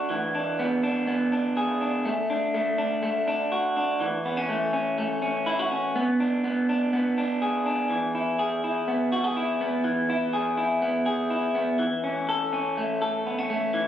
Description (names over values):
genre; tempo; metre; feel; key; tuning
indie pop; 123 BPM; 4/4; straight; E mixolydian; A4 = 440 Hz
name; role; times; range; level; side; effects
electric guitar through a small old amp; solo; 0.0-13.9 s; E3 to A4; -23 LUFS; equal; spring reverb
room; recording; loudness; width
light reverb, digital ambience; recorded on a phone in the room, club reverb; -23 LUFS; side -10 dB against mid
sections
0.0-7.9 A section; 7.9-13.9 B section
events
none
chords
0.1 E7; 2.1 D; 4.0 F#m7; 6.0 Bm6; 7.9 E; 11.8 A